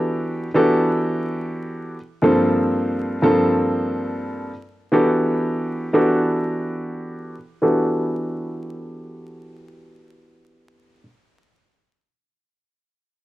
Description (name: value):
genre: hip hop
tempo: 89 BPM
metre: 4/4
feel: swing 62% on 16ths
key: E minor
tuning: A4 = 440 Hz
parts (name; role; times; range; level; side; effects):
- dark baby grand piano; accompaniment; 0.0-11.0 s; G2 to A4; -19 LUFS; equal; cassette tape, high-pass filter, low-pass filter
room: light reverb, small room ambience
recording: dry, gritty hardware recording, vinyl crackle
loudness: -18 LUFS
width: side -16 dB against mid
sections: 0.0-4.9 A section; 4.9-7.6 B section; 7.6-10.3 C section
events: filter sweep on grand piano 4.9-7.6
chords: 0.0 Em11; 2.2 Gm11; 4.9 Em11